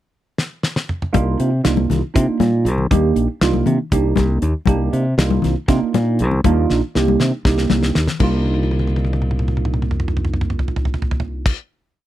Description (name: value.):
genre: electric jazz fusion.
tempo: 238 BPM (eighths).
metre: 7/8.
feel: straight.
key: C minor.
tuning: A4 = 441 Hz.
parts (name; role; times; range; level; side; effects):
damped 70s drum kit; drums; 0.4-11.6 s; crash cymbal, hi-hat, kick drum, snare drum, toms; -20 LUFS; equal; none.
tine electric piano; accompaniment; 1.1-11.5 s; Bb3 to G4; -21 LUFS; right 5 dB; phaser.
fingered electric bass; bass; 1.1-11.5 s; Bb1 to C3; -18 LUFS; equal; none.
congas; percussion; 1.1-11.5 s; none; -22 LUFS; left 8 dB; none.
room: little or no reverb.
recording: dry, close 1970s-style studio recording.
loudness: -16 LUFS.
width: side -13 dB against mid.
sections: 0.0-1.1 pickup bar; 1.1-8.2 groove; 8.2-11.7 final chord.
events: drum fill 0.4-1.1, 6.7-8.2, 8.5-11.5.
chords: 0.0 N.C.; 1.1 Cm11.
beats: 0.14 0.39 0.64 0.89 | 1.15 1.40 1.65 1.90 2.15 2.41 2.66 | 2.91 3.16 3.42 3.67 3.92 4.17 4.43 | 4.68 4.93 5.18 5.43 5.69 5.94 6.19 | 6.44 6.70 6.95 7.20 7.45 7.70 7.96 | 8.21 8.46 8.71 8.96 9.21 9.46 9.71 | 9.96 10.22 10.47 10.72 10.97 11.22 11.47.